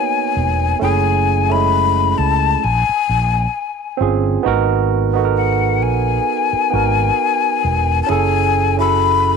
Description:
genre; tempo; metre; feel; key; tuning
R&B, neo-soul; 66 BPM; 4/4; swing 55% on 16ths; unclear; A4 = 440 Hz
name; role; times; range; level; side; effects
breathy bright jazz flute; melody; 0.0-9.4 s; F#5 to B5; -17 LUFS; left 10 dB; none
barky tine electric piano; accompaniment; 0.0-9.4 s; G#3 to C#5; -19 LUFS; right 13 dB; auto-pan
fretless electric bass; bass; 0.4-9.4 s; E1 to C#2; -19 LUFS; equal; tube saturation
room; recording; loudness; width
moderate spring reverb, RT60 2.3 s; 1960s-style stereo with parts hard left and right; -14 LUFS; side -5 dB against mid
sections
0.0-9.4 A section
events
none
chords
0.0 G#m9; 0.8 F#m9; 2.6 A#m9; 4.4 G#m9; 8.1 F#m9

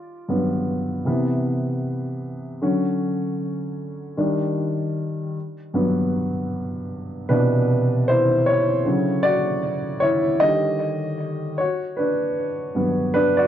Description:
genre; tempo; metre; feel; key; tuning
hip hop; 77 BPM; 4/4; swing 58% on 16ths; C lydian; A4 = 439 Hz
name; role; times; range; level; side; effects
dark upright piano; solo; 0.0-13.5 s; G2 to Eb5; -20 LUFS; equal; cassette tape, tape echo
room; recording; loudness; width
wet small room ambience, RT60 0.5 s; none; -20 LUFS; side -10 dB against mid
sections
0.0-13.5 A section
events
upright piano solo 0.0-13.5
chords
0.0 Gmaj7; 1.1 Cmaj7; 2.6 Dmaj7; 4.2 Ebmaj7; 5.3 Gmaj7; 7.3 Cmaj9; 8.9 Dmaj9; 10.4 Ebmaj7; 11.6 Gmaj7

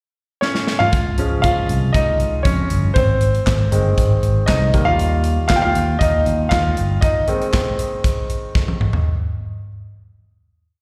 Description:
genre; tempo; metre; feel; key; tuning
piano-driven pop; 118 BPM; 4/4; straight; Ab major; A4 = 440 Hz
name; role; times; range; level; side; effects
clear concert grand piano; accompaniment; 0.4-9.1 s; Eb3 to G5; -22 LUFS; equal; slapback echo
modern studio drum kit; drums; 0.4-9.1 s; handclaps, hi-hat, kick drum, snare drum, toms; -22 LUFS; equal; none
fingered electric bass; bass; 0.9-7.0 s; G1 to F2; -21 LUFS; equal; none
room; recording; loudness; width
light reverb; live gig heard through the venue's PA, recital hall reverb; -18 LUFS; mono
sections
0.0-0.9 pickup bar; 0.9-9.1 verse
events
drum fill 0.4-0.9, 8.6-9.1; grand piano solo 0.9-9.1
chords
0.0 Db; 3.0 Ab; 4.7 Eb; 7.0 Ab

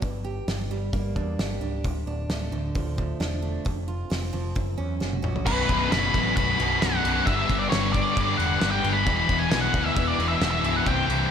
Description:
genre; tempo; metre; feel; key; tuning
quiet-loud alternative rock; 133 BPM; 4/4; straight; B minor from 5.5 s; A4 = 441 Hz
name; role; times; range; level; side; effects
picked steel-string acoustic guitar; arpeggios; 0.0-5.5 s; D2 to G4; -33 LUFS; right 4 dB; slapback echo
overdriven picked electric bass; bass; 0.0-11.2 s; B0 to G2; -29 LUFS; equal; none
loose indie drum kit; drums; 0.0-11.2 s; crash cymbal, hi-hat, kick drum, snare drum, toms; -28 LUFS; equal; none
octave-fuzz lead guitar; melody; 5.5-11.3 s; B4 to B5; -26 LUFS; left 2 dB; distortion, slapback echo, tape echo
clear symphonic string section; sustained chords; 5.5-11.3 s; D3 to C5; -36 LUFS; equal; none
scooped high-gain guitar; riff; 5.5-11.3 s; B1 to G3; -30 LUFS; right 10 dB; distortion, slapback echo
scooped high-gain guitar; riff; 5.5-11.3 s; B1 to G3; -32 LUFS; equal; distortion, slapback echo
thick fuzz guitar; riff; 5.5-11.3 s; B1 to G3; -30 LUFS; left 10 dB; distortion
room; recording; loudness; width
moderate concert hall reverb, RT60 2.5 s; big arena sound; -22 LUFS; side -8 dB against mid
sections
0.0-5.5 A section; 5.5-11.3 B section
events
drum fill 5.0-5.5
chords
0.0 Gm; 1.8 Dm; 3.7 F5; 4.6 F#7; 5.5 Bm; 7.3 G; 9.1 E

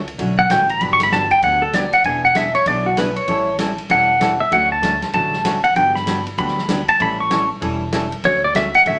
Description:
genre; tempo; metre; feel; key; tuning
country, western swing; 194 BPM; 4/4; swing 63% on 8ths; D major; A4 = 440 Hz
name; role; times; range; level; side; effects
upright bass; bass; 0.0-9.0 s; E1 to D2; -30 LUFS; equal; none
vintage drum kit; drums; 0.1-8.9 s; hi-hat, kick drum, ride cymbal, snare drum; -29 LUFS; equal; none
archtop guitar, miked and amplified; accompaniment; 0.2-9.0 s; D3 to A4; -27 LUFS; equal; none
pedal steel guitar; melody; 0.4-9.0 s; F#4 to C#6; -17 LUFS; equal; none
room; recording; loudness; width
wet club reverb, RT60 0.5 s; none; -17 LUFS; mono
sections
0.0-9.0 A section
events
pedal steel guitar solo 0.0-9.0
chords
0.0 Bm7; 0.8 Gmaj7; 2.0 E7; 3.3 A6; 4.5 Dmaj7; 5.8 Gmaj7; 7.0 A7; 8.2 Dmaj7

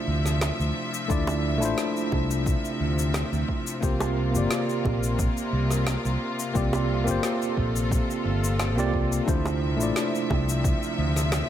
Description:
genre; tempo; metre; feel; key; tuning
sunset chillout; 88 BPM; 4/4; swing 53% on 16ths; D minor; A4 = 441 Hz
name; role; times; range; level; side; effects
tine electric piano; accompaniment; 0.0-11.5 s; A3 to D5; -28 LUFS; equal; auto-pan, tape echo
clear studio string section; sustained chords; 0.0-11.5 s; C3 to E5; -31 LUFS; left 1 dB; none
fretless electric bass; bass; 0.1-11.4 s; G1 to D2; -26 LUFS; equal; ensemble chorus
electronic snare drum and shaker; drums; 0.3-11.5 s; none; -33 LUFS; left 1 dB; none
bongos; percussion; 0.4-11.5 s; none; -34 LUFS; right 1 dB; none
electronic kick drum; drums; 1.1-10.8 s; none; -28 LUFS; equal; none
room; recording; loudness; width
light reverb; none; -23 LUFS; side -11 dB against mid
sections
0.0-11.5 A section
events
none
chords
0.0 Dm9; 3.8 C7sus4; 9.3 Dm9

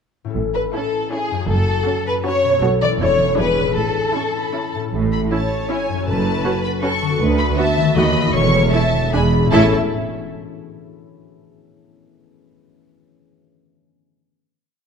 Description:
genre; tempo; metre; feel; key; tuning
cinematic, playful, whimsical film cue; 157 BPM; 3/4; straight; A major; A4 = 440 Hz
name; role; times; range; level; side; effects
concert harp; arpeggios; 0.2-9.7 s; F#2 to E5; -23 LUFS; left 8 dB; none
bright studio double bass section; bass; 0.4-9.7 s; E1 to D#2; -22 LUFS; right 4 dB; none
rich studio cello section; bass; 0.4-9.7 s; D2 to B2; -23 LUFS; right 3 dB; none
rich studio violin section; second line; 0.5-9.7 s; G#4 to G#5; -20 LUFS; left 1 dB; none
clear studio violin section; melody; 0.7-9.7 s; G#5 to C#6; -26 LUFS; equal; none
rich studio viola section; accompaniment; 0.7-9.7 s; G#3 to F#4; -25 LUFS; right 1 dB; none
room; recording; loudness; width
wet scoring stage reverb, RT60 1.9 s; dark, warm production; -16 LUFS; side -6 dB against mid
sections
0.4-4.9 A section; 4.9-9.5 A section; 9.5-10.7 final chord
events
none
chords
0.4 A; 1.5 F#m; 2.6 B7(no3); 3.0 A/E; 3.4 E7; 3.8 A; 6.1 F#m; 7.2 Bm7/D; 8.0 B7/D#; 8.3 A/E; 9.1 E7; 9.5 A

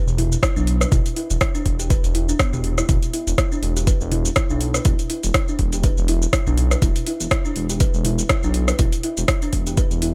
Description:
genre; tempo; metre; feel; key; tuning
afro house; 122 BPM; 4/4; swing 56% on 16ths; E minor; A4 = 440 Hz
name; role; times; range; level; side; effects
kalimba; arpeggios; 0.0-10.1 s; B3 to B4; -29 LUFS; equal; sidechain pumping, dub echo
smooth synth bass; bass; 0.1-10.1 s; E1 to B1; -24 LUFS; equal; sidechain pumping
afro-pop drum kit; drums; 0.1-10.1 s; hi-hat, rim click, shaker, toms; -26 LUFS; equal; overdrive
electronic kick drum; drums; 0.4-9.9 s; none; -22 LUFS; equal; overdrive
room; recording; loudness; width
digital ambience; none; -20 LUFS; mono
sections
0.0-10.1 A section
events
none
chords
0.0 E5

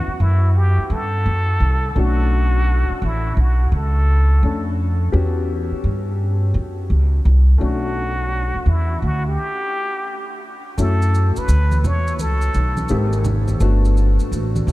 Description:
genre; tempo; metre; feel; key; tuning
hip hop, jazz-hop; 85 BPM; 4/4; swing 65% on 16ths; E dorian; A4 = 440 Hz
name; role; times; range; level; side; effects
trumpet with plunger mute; melody; 0.0-13.3 s; E4 to C#5; -26 LUFS; equal; analog delay
warm upright piano; accompaniment; 0.0-14.7 s; E3 to F#5; -27 LUFS; left 4 dB; none
upright bass; bass; 0.0-14.7 s; G1 to G2; -16 LUFS; equal; none
maracas and congas; percussion; 10.8-14.7 s; none; -28 LUFS; right 2 dB; none
room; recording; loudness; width
light reverb, studio reverb; none; -16 LUFS; side -18 dB against mid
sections
0.0-10.8 A section; 10.8-14.7 B section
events
stop 9.4-10.8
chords
0.0 Em69; 2.0 Bm9; 5.1 Em69; 7.6 Bm9; 9.4 N.C.; 10.8 F#m7; 12.9 G#maj9; 13.6 Gmaj9

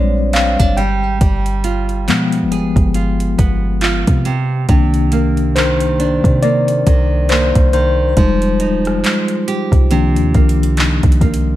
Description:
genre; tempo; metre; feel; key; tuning
contemporary R&B; 69 BPM; 4/4; swing 58% on 16ths; C minor; A4 = 437 Hz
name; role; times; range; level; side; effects
mellow tine electric piano; accompaniment; 0.0-11.6 s; Eb3 to G5; -17 LUFS; left 3 dB; medium stereo tremolo
nylon-string guitar; arpeggios; 0.0-11.6 s; Bb2 to Ab4; -21 LUFS; right 7 dB; digital delay
clean 808-style bass; bass; 0.0-11.6 s; Eb1 to C3; -17 LUFS; equal; none
smooth R&B drum kit; drums; 0.3-11.5 s; handclaps, hi-hat, kick drum, rim click; -16 LUFS; equal; none
room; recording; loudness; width
little or no reverb; dark, warm production; -12 LUFS; side -14 dB against mid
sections
0.0-11.6 A section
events
tine electric piano solo 0.0-11.6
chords
0.0 Bb13; 0.8 G7b9; 4.3 Cm9; 8.2 Fm9; 9.9 Cm11

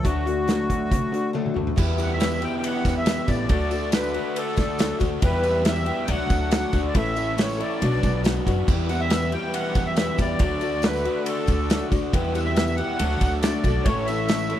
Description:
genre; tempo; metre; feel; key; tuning
folk rock and heartland rock; 139 BPM; 4/4; straight; E dorian; A4 = 440 Hz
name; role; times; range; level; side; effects
accordion; melody; 0.0-14.6 s; F#4 to G5; -28 LUFS; equal; light tremolo tuning
picked acoustic archtop guitar; accompaniment; 0.0-14.6 s; A2 to A4; -29 LUFS; left 7 dB; none
raw garage guitar; riff; 0.0-14.6 s; E2 to G4; -28 LUFS; right 2 dB; overdrive
loose indie drum kit; drums; 0.0-14.6 s; crash cymbal, hi-hat, kick drum, ride cymbal, snare drum, toms; -25 LUFS; equal; none
upright bass; bass; 0.1-14.5 s; A1 to D3; -27 LUFS; equal; none
muted studio string section; sustained chords; 1.8-14.6 s; F#4 to E6; -37 LUFS; left 1 dB; none
tambourine; percussion; 1.9-14.6 s; none; -44 LUFS; right 8 dB; none
room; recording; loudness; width
little or no reverb; none; -20 LUFS; side -11 dB against mid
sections
0.0-1.8 A section; 1.8-14.6 B section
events
drum fill 1.3-1.8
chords
0.0 D; 1.8 Em; 3.5 D; 5.2 Em; 6.1 D; 7.0 A; 7.8 Bm; 8.7 Em; 10.4 D; 12.1 Em; 13.0 D; 13.9 A

